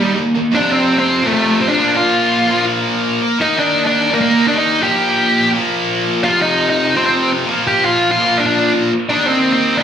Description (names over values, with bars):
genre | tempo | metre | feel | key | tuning
punk | 168 BPM | 4/4 | straight | unclear | A4 = 440 Hz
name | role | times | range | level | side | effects
dark smooth lead guitar | melody | 0.0-9.8 s | G3 to G5 | -14 LUFS | equal | overdrive, slapback echo
tight distorted guitar | riff | 0.0-9.8 s | F2 to Eb4 | -16 LUFS | equal | distortion, slapback echo
room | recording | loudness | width
light reverb, digital ambience | live gig heard through the venue's PA, club reverb | -12 LUFS | side -8 dB against mid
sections
0.5-9.8 A section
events
none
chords
0.0 Eb; 0.5 F; 1.8 Bb; 3.4 Eb5; 4.8 Bb5; 6.2 F5; 7.5 Bb; 9.1 Eb5